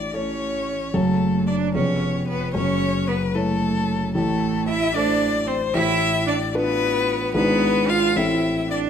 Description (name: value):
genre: quick classical-period movement for piano trio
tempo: 75 BPM (dotted quarters)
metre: 6/8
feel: straight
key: A minor from 4.1 s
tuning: A4 = 440 Hz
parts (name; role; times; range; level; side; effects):
- rich violin; melody; 0.0-8.8 s; A4 to F5; -25 LUFS; left 7 dB; none
- dark concert grand piano; accompaniment; 0.0-8.9 s; E#1 to C#5; -22 LUFS; left 1 dB; none
- clear cello; second line; 0.1-8.9 s; A3 to F4; -25 LUFS; right 8 dB; none
room: moderate recital hall reverb, RT60 1.5 s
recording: none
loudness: -19 LUFS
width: side -8 dB against mid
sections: 0.0-8.9 A section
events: none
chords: 0.0 A; 0.9 F#m; 1.7 C#7/E#; 2.5 F#m7; 4.1 Am; 5.7 Bm7b5/A; 7.3 E7/G#; 8.2 Am